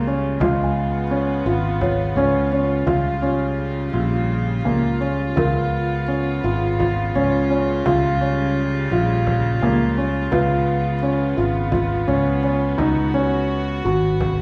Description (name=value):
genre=contemporary instrumental, chamber music in an uneven meter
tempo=170 BPM (eighths)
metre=7/8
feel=straight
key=Db mixolydian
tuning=A4 = 440 Hz
part: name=clear studio string section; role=sustained chords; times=0.0-14.4 s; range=Db3 to Gb4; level=-29 LUFS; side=equal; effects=none
part: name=felt-muted upright piano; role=arpeggios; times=0.0-14.4 s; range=Bb3 to Gb4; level=-24 LUFS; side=equal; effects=none
part: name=picked electric bass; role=bass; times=0.0-14.4 s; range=Ab1 to Db2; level=-25 LUFS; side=equal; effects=none
part: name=small celesta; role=texture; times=0.0-12.5 s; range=Bb4 to Ab5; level=-33 LUFS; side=equal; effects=none
part: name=frame drum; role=percussion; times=0.4-14.4 s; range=none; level=-31 LUFS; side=equal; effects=none
room=wet recital hall reverb, RT60 1.4 s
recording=recorded in a church or concert hall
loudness=-20 LUFS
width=mono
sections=0.0-14.4 A section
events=none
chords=0.4 Db7; 2.9 Bbm6; 5.4 Db7; 7.9 Bbm6; 10.3 Db7; 12.8 Db7sus4